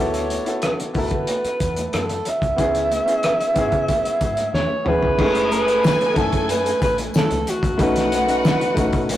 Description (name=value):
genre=lush 1970s-style soul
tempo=92 BPM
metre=4/4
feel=straight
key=F# minor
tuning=A4 = 440 Hz
part: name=warm alto saxophone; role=melody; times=0.0-9.1 s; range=F#4 to E5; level=-21 LUFS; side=right 1 dB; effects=tape echo
part: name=warm grand piano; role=accompaniment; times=0.0-9.2 s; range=G#3 to G#5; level=-24 LUFS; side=left 1 dB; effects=none
part: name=deep dub fingered electric bass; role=bass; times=0.0-9.2 s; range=E#1 to D3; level=-31 LUFS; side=left 1 dB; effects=none
part: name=cloth-damped thuddy drum kit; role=drums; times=0.1-9.2 s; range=crash cymbal, hi-hat, kick drum, rim click, snare drum, toms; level=-22 LUFS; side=equal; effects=none
part: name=congas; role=percussion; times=0.3-9.2 s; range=none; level=-34 LUFS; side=right 3 dB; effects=none
part: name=warm studio string section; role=second line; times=5.2-9.2 s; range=F#4 to G#5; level=-27 LUFS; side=left 2 dB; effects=none
part: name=tambourine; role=percussion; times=5.5-9.2 s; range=none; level=-43 LUFS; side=left 6 dB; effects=none
room=moderate stone room reverb, RT60 1.1 s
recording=rough rehearsal-room recording, warm saturation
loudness=-17 LUFS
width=side -13 dB against mid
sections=0.0-5.2 A section; 5.2-9.2 B section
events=drum fill 4.5-5.2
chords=0.0 D6; 2.6 C#m7; 5.2 F#m7; 7.8 B7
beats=0.63 1.28 1.93 | 2.58 3.24 3.89 4.54 | 5.19 5.84 6.49 7.14 | 7.79 8.45 9.10